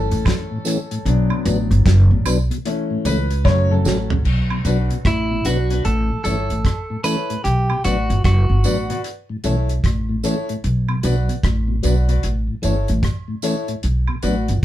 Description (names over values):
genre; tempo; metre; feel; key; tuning
roots reggae; 75 BPM; 4/4; swing 63% on 16ths; B minor; A4 = 440 Hz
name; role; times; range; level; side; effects
bright grand piano; stabs; 0.0-14.5 s; E3 to D5; -26 LUFS; left 3 dB; none
upright bass; bass; 0.0-14.6 s; F#1 to C#2; -18 LUFS; equal; none
damped 70s drum kit; drums; 0.1-14.6 s; crash cymbal, hi-hat, kick drum, rim click, snare drum, toms; -22 LUFS; equal; none
woodblock and tambourine; percussion; 0.3-14.5 s; none; -30 LUFS; right 5 dB; none
mellow tonewheel organ; accompaniment; 0.5-14.6 s; F#2 to D4; -24 LUFS; left 2 dB; slow rotary speaker
clean electric guitar; melody; 5.1-9.0 s; E4 to B4; -24 LUFS; right 2 dB; none
room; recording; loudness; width
moderate studio reverb, RT60 0.5 s; band playing live in one room; -17 LUFS; side -13 dB against mid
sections
0.0-4.3 A section; 4.3-14.6 B section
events
grand piano solo 0.0-4.3; drum fill 3.5-4.3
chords
0.0 A; 1.1 Bm; 2.7 A; 3.5 F#m; 4.3 Bm; 5.8 A; 7.4 Bm; 9.0 A; 10.6 Bm; 12.2 A; 13.8 Bm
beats
0.26 | 1.06 1.86 2.66 3.46 | 4.25 5.05 5.85 6.65 | 7.45 8.24 9.04 9.84 | 10.64 11.44 12.23 13.03 | 13.83 14.63